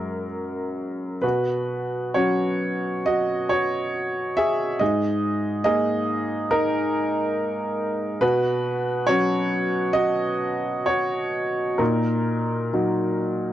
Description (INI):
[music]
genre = neoclassical minimalist piano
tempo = 68 BPM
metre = 4/4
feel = uneven beats, rubato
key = B major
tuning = A4 = 439 Hz
[part]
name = clear baby grand piano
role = solo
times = 0.0-13.5 s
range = F#2 to E5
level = -21 LUFS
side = equal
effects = none
[sound]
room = little or no reverb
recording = dry, close 1970s-style studio recording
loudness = -21 LUFS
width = side -12 dB against mid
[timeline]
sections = 0.0-1.2 A section; 1.2-13.5 A section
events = none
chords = 0.0 F#add9; 1.2 Bsus2; 4.8 G#sus2; 8.2 Bsus2; 11.8 D#m/A#